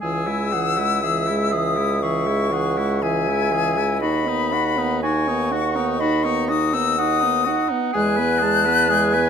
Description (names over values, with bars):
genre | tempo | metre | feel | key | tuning
classical, slow romantic movement for wind quintet | 61 BPM | 4/4 | rubato | C# minor | A4 = 440 Hz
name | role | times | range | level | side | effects
silver concert flute | melody | 0.0-9.3 s | G#5 to F#6 | -22 LUFS | left 7 dB | none
warm oboe | second line | 0.0-9.3 s | D#4 to B4 | -29 LUFS | left 4 dB | none
mellow French horn | accompaniment | 0.0-9.3 s | E3 to D#4 | -25 LUFS | equal | none
warm clarinet | accompaniment | 0.0-9.3 s | D#5 to A5 | -26 LUFS | right 9 dB | none
warm bassoon | bass | 0.0-9.3 s | C#2 to E2 | -24 LUFS | right 2 dB | none
room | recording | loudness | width
moderate large studio reverb, RT60 1.2 s | none | -18 LUFS | side -7 dB against mid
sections
0.0-9.3 A section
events
none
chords
0.0 C#m; 4.0 B/D#; 7.9 E